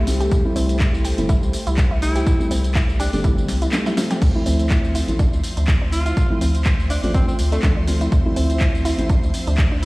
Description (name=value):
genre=deep house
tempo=123 BPM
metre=4/4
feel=swing 55% on 16ths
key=D minor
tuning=A4 = 441 Hz
part: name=warm analog pad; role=sustained chords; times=0.0-9.8 s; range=F3 to E5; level=-32 LUFS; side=equal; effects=chorus, sidechain pumping
part: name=felt-muted upright piano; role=stabs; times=0.0-9.1 s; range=F3 to G4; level=-24 LUFS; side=equal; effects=digital delay
part: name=round analog bass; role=bass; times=0.0-9.8 s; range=G1 to D2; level=-21 LUFS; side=equal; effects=sidechain pumping
part: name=punchy analog drum machine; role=drums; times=0.1-9.8 s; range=crash cymbal, handclaps, hi-hat, snare drum, tambourine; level=-28 LUFS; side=equal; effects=none
part: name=analog pluck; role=arpeggios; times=0.2-9.8 s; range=C4 to G4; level=-31 LUFS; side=right 2 dB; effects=chorus, sidechain pumping, tape echo
part: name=electronic kick drum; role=drums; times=0.3-9.7 s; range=none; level=-19 LUFS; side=equal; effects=none
part: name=clear alto saxophone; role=melody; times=2.0-9.8 s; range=A3 to F4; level=-28 LUFS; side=equal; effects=tape echo
part: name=string machine, violins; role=texture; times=4.2-9.8 s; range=C5 to C6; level=-38 LUFS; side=equal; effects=ensemble chorus, sidechain pumping
room=digital ambience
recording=played on a big sound system in a bare room, stone room reverb, vinyl crackle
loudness=-16 LUFS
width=side -22 dB against mid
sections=0.0-9.8 A section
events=drum fill 3.5-4.2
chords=0.0 Am7; 4.2 Dm9